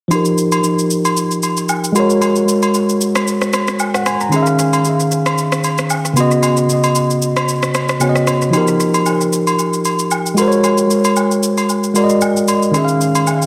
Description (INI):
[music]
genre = amapiano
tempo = 114 BPM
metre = 4/4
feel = swing 55% on 16ths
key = F phrygian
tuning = A4 = 435 Hz
[part]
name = tine electric piano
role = accompaniment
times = 0.1-13.5 s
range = Db3 to Bb5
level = -16 LUFS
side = equal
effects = low-pass filter, analog delay
[part]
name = electronic shaker and rim click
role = drums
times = 0.1-13.5 s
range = none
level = -24 LUFS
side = equal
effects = analog delay
[part]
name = agogo bells and woodblock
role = percussion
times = 0.1-13.4 s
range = none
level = -23 LUFS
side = equal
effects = analog delay
[sound]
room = moderate echo chamber reverb, RT60 1.6 s, digital ambience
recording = echo-heavy mix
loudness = -15 LUFS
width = mono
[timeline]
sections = 0.1-8.5 A section; 8.5-13.5 B section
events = filter sweep on tine electric piano 0.1-8.5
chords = 0.1 F9sus4; 2.0 Ab9sus4; 4.3 Eb9sus4; 6.2 Db9sus4; 8.5 F9sus4; 10.4 Ab9sus4; 12.7 Eb9sus4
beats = | 0.11 0.64 1.17 1.69 | 2.22 2.75 3.27 3.80 | 4.33 4.85 5.38 5.90 | 6.43 6.96 7.48 8.01 | 8.54 9.06 9.59 10.11 | 10.64 11.17 11.69 12.22 | 12.75 13.27